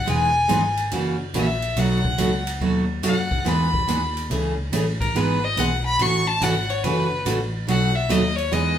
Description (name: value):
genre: country, western swing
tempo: 142 BPM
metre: 4/4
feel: swing 66% on 8ths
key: E major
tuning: A4 = 440 Hz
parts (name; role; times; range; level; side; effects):
- clear fiddle; melody; 0.0-8.8 s; A#4 to C#6; -23 LUFS; left 2 dB; none
- vintage muted picked electric bass; bass; 0.0-8.8 s; E1 to F#2; -26 LUFS; equal; none
- picked steel-string acoustic guitar; accompaniment; 0.1-8.8 s; B2 to G#4; -23 LUFS; right 2 dB; none
- swinging big-band drum kit; drums; 0.1-8.7 s; hi-hat, kick drum, ride cymbal, snare drum; -30 LUFS; equal; none
room: wet studio reverb, RT60 0.6 s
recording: band playing live in one room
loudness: -19 LUFS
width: side -10 dB against mid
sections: 0.0-8.8 A section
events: fiddle solo 0.0-8.8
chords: 0.1 Emaj7; 0.9 F#7; 1.8 B7; 3.5 Emaj7; 4.3 Amaj7; 5.1 Emaj7/G#; 6.0 A6; 6.8 F#m7; 7.7 B7